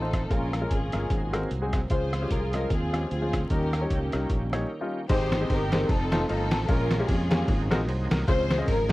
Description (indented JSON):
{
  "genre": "uptempo gospel",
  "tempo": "151 BPM",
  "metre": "4/4",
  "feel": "swing 57% on 8ths",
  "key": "Ab major",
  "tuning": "A4 = 439 Hz",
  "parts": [
    { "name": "warm studio string section", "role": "melody", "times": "0.0-8.9 s", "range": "Bb3 to C5", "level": "-30 LUFS", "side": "left 1 dB", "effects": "none" },
    { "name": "warm concert grand piano", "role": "accompaniment", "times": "0.0-8.9 s", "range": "Ab2 to Eb5", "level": "-31 LUFS", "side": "left 2 dB", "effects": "none" },
    { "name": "bright tonewheel organ", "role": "sustained chords", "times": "0.0-8.9 s", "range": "Db3 to Ab4", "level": "-38 LUFS", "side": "right 4 dB", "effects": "slow rotary speaker, overdrive, chorus vibrato" },
    { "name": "dark French horn section", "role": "sustained chords", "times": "0.0-5.1 s", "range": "Eb3 to C5", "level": "-43 LUFS", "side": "right 1 dB", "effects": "none" },
    { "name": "fingered electric bass", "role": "bass", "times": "0.0-8.9 s", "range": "F1 to F2", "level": "-29 LUFS", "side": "equal", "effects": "none" },
    { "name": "trip hop sampler-style drum kit", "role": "drums", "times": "0.1-8.9 s", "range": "crash cymbal, hi-hat, kick drum, ride cymbal, rim click, snare drum", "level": "-28 LUFS", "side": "equal", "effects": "none" }
  ],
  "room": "little or no reverb",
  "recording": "dry, close 1970s-style studio recording, vinyl crackle",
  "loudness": "-24 LUFS",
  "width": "side -18 dB against mid",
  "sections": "0.0-5.1 A section; 5.1-8.9 B section",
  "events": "break 4.7-5.1",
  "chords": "0.3 Bbm7; 1.1 Ab9; 1.9 Dbmaj7; 3.5 Eb7; 5.1 Abmaj7; 5.9 F7; 6.7 Bbm7; 7.5 Ab9; 8.3 Dbmaj7"
}